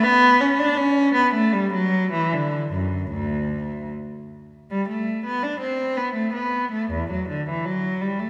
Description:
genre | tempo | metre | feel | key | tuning
classical, baroque-style suite movement for unaccompanied cello | 74-85 BPM | 3/4 | rubato | D major | A4 = 442 Hz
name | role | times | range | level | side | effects
clear cello | solo | 0.0-8.3 s | D2 to D4 | -22 LUFS | equal | none
room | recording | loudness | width
wet concert hall reverb, RT60 2.2 s | recorded in a church or concert hall | -22 LUFS | mono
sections
0.0-4.7 A section; 4.7-8.3 A section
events
none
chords
none

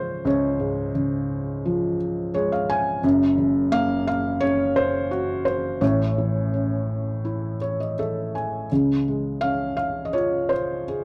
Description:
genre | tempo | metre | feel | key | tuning
classical, lyrical solo piano | 85 BPM | 4/4 | rubato | Db major | A4 = 441 Hz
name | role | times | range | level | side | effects
felt-muted upright piano | solo | 0.0-11.0 s | Gb1 to Ab5 | -24 LUFS | equal | none
room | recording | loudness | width
moderate studio reverb, RT60 0.6 s | dark, warm production | -23 LUFS | mono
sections
0.0-11.0 A section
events
felt piano fill 2.0-3.0, 7.2-8.7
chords
0.0 Db; 3.0 Gb; 5.8 A; 8.7 Db

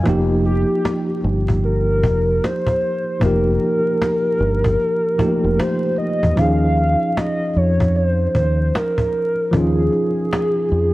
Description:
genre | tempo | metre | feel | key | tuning
lo-fi hip hop | 76 BPM | 4/4 | swing 63% on 16ths | F minor | A4 = 438 Hz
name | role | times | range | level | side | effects
mellow tine electric piano | accompaniment | 0.0-10.9 s | F3 to Ab4 | -21 LUFS | equal | medium stereo tremolo, cassette tape, low-pass filter
deep dub fingered electric bass | bass | 0.0-10.9 s | F1 to F2 | -18 LUFS | equal | none
cajon | drums | 0.1-10.8 s | none | -23 LUFS | equal | vintage 12-bit sampler grit
warbly nostalgic lead | melody | 0.5-10.9 s | G4 to F5 | -20 LUFS | equal | chorus, tremolo, low-pass filter
room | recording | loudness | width
light reverb, digital ambience | worn, warbling old tape, cassette tape, vinyl crackle, warbly pitch drift | -16 LUFS | side -18 dB against mid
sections
0.1-10.9 A section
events
none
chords
0.1 F9sus4; 6.4 Eb9sus4

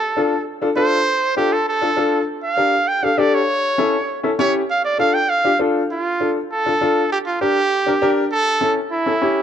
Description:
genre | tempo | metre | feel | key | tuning
latin | 199 BPM | 4/4 | straight | D harmonic minor | A4 = 440 Hz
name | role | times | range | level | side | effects
clear trumpet | melody | 0.0-9.4 s | E4 to G5 | -18 LUFS | right 2 dB | none
warm upright piano | accompaniment | 0.2-9.4 s | C#4 to Bb4 | -19 LUFS | left 2 dB | none
room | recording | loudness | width
moderate plate reverb, RT60 3.5 s | dark, warm production | -16 LUFS | side -9 dB against mid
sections
0.0-5.9 A section; 5.9-9.4 B section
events
trumpet solo 0.0-5.9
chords
0.0 Dm; 2.3 Gm; 3.5 A7; 4.7 Dm; 7.1 Gm; 8.3 A7

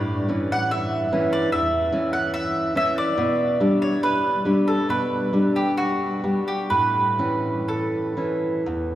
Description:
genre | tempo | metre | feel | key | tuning
romantic duo for mandolin and classical guitar | 61-75 BPM | 4/4 | rubato | unclear | A4 = 440 Hz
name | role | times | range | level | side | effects
nylon-string guitar | accompaniment | 0.0-8.9 s | E2 to D4 | -22 LUFS | equal | none
mandolin | melody | 0.5-8.9 s | F#4 to F#5 | -23 LUFS | right 1 dB | none
room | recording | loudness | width
wet cathedral reverb, RT60 6.3 s | recorded in a church or concert hall, studio reverb | -20 LUFS | side -13 dB against mid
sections
0.0-8.9 A section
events
none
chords
0.0 A (rootless); 3.2 G/B; 6.7 A

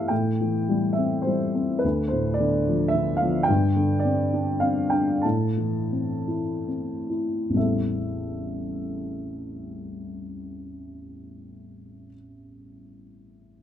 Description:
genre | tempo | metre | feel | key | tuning
classical, lyrical solo piano | 65-111 BPM | 3/4 | rubato | A minor | A4 = 441 Hz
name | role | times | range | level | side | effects
dark upright piano | solo | 0.0-13.6 s | A1 to A5 | -23 LUFS | equal | none
room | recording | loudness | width
light reverb | close, detailed microphones | -22 LUFS | side -10 dB against mid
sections
0.1-7.6 A section; 7.6-12.8 B section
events
slowing down 3.5-7.6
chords
0.1 Am7; 1.8 Dm; 3.5 Gsus4; 5.2 Am; 7.6 Am7

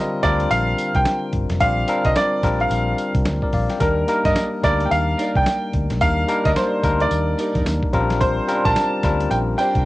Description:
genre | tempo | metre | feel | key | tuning
R&B, new jack swing | 109 BPM | 4/4 | swing 61% on 16ths | unclear | A4 = 440 Hz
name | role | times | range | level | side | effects
clear concert grand piano | melody | 0.0-9.9 s | Bb4 to A5 | -21 LUFS | right 1 dB | cassette tape
bell-like tine electric piano | accompaniment | 0.0-9.9 s | D3 to G5 | -22 LUFS | left 2 dB | auto-pan, cassette tape
vintage muted fingered electric bass | bass | 0.2-9.8 s | F1 to G2 | -23 LUFS | equal | none
dusty soul sampler-style drum kit | drums | 0.2-9.9 s | hi-hat, kick drum, snare drum, tambourine | -24 LUFS | equal | cassette tape
warm studio string section | stabs | 4.2-9.8 s | D4 to D5 | -30 LUFS | right 3 dB | cassette tape, analog delay
room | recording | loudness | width
light reverb | home recording on cassette | -17 LUFS | side -18 dB against mid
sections
0.0-9.9 A section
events
none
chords
0.0 Bb69; 3.8 Ebmaj7; 7.9 Bb69

